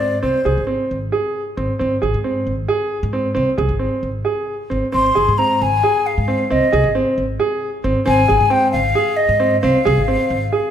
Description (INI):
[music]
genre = contemporary instrumental, chamber music in an uneven meter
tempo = 269 BPM (eighths)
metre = 7/8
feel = straight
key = Ab major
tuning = A4 = 440 Hz
[part]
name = breathy mellow jazz flute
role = melody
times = 0.0-0.6, 4.9-10.7 s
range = C5 to C6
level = -17 LUFS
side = left 2 dB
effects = none
[part]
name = clear grand piano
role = arpeggios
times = 0.0-10.7 s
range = C4 to Ab4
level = -19 LUFS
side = right 2 dB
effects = none
[part]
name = upright bass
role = bass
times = 0.0-10.5 s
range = Ab1 to Ab2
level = -22 LUFS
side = equal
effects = none
[sound]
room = moderate recital hall reverb, RT60 1.8 s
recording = none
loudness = -15 LUFS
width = side -9 dB against mid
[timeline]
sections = 0.0-10.7 A section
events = none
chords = 0.0 Ab